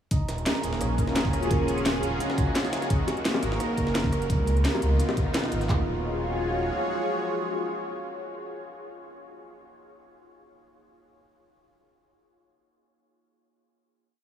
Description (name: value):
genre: liquid drum and bass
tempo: 172 BPM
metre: 4/4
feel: straight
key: Eb minor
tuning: A4 = 440 Hz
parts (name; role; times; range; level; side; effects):
- lush unison pad; sustained chords; 0.4-8.9 s; Cb4 to Db5; -30 LUFS; left 1 dB; chorus, phaser, sidechain pumping
- concert harp; arpeggios; 0.1-8.4 s; Bb3 to Bb4; -32 LUFS; right 2 dB; diffuse ambient delay
- sub bass with octave; bass; 0.1-6.7 s; Eb1 to Db2; -28 LUFS; equal; none
- drum and bass drum kit; drums; 0.1-5.8 s; handclaps, kick drum, toms; -27 LUFS; equal; none
- drum and bass drum kit; drums; 0.1-5.7 s; hi-hat, rim click, snare drum; -32 LUFS; equal; none
- jungle sampler-style drum kit; drums; 0.1-5.7 s; hi-hat, snare drum; -36 LUFS; equal; high-pass filter on hats, high-pass filter on snare, high-pass filter on room
- bongos; percussion; 3.1-5.2 s; none; -36 LUFS; left 3 dB; none
room: moderate huge ambient reverb, RT60 8.4 s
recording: dreamy mix soaked in reverb, small room reverb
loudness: -24 LUFS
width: side -9 dB against mid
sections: 0.1-5.7 drop; 5.7-8.5 final chord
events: drop 0.1-5.7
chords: 0.1 Ebm11; 2.9 Ab5; 4.3 Db7; 5.7 Ebm11